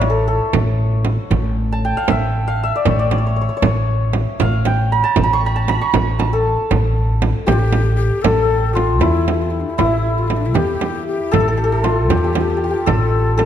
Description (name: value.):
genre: Persian modal ensemble.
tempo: 78 BPM (dotted quarters).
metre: 6/8.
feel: straight.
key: A dastgah homayun.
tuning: A4 = 442 Hz.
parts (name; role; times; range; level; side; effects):
santur; melody; 0.0-13.5 s; E4 to C#6; -20 LUFS; left 1 dB; none.
upright bass; bass; 0.0-13.5 s; A1 to E2; -18 LUFS; equal; none.
frame drum; percussion; 0.0-13.5 s; none; -21 LUFS; right 6 dB; none.
breathy ney; second line; 7.5-13.4 s; D4 to A4; -23 LUFS; left 7 dB; none.
room: light reverb.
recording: close, detailed microphones.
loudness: -15 LUFS.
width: side -10 dB against mid.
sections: 0.0-8.2 A section; 8.2-13.5 B section.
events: none.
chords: none.